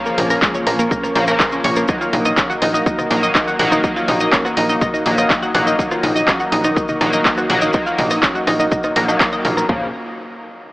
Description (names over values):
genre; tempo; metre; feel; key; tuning
melodic techno; 123 BPM; 4/4; straight; unclear; A4 = 441 Hz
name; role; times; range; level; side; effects
lush unison pad; sustained chords; 0.0-9.9 s; Bb3 to Eb5; -24 LUFS; equal; chorus, phaser, sidechain pumping
sync-sweep polysynth; stabs; 0.0-9.9 s; Db3 to Bb3; -21 LUFS; equal; chorus, phaser, sidechain pumping, digital delay
analog pluck; arpeggios; 0.1-9.9 s; Ab3 to Gb6; -19 LUFS; equal; chorus, sidechain pumping, digital delay
cabasa; percussion; 0.1-9.7 s; none; -32 LUFS; right 1 dB; none
tight sequencer bass; bass; 0.2-9.9 s; Bb1; -21 LUFS; equal; sidechain pumping
house drum kit; drums; 0.2-9.7 s; handclaps, hi-hat, rim click, toms; -20 LUFS; equal; overdrive
house drum kit; drums; 0.4-9.8 s; kick drum, toms; -22 LUFS; equal; overdrive
room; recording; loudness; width
light reverb, digital ambience; AM radio sound; -14 LUFS; side -20 dB against mid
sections
0.0-9.7 A section; 9.7-10.7 B section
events
drop 0.0-9.7; band accent 9.2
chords
0.0 Bbm; 1.9 Ebm/Bb; 9.7 Bbm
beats
0.42 0.91 1.40 | 1.89 2.37 2.86 3.35 | 3.84 4.33 4.81 5.30 | 5.79 6.28 6.76 7.25 | 7.74 8.23 8.72 9.20 | 9.69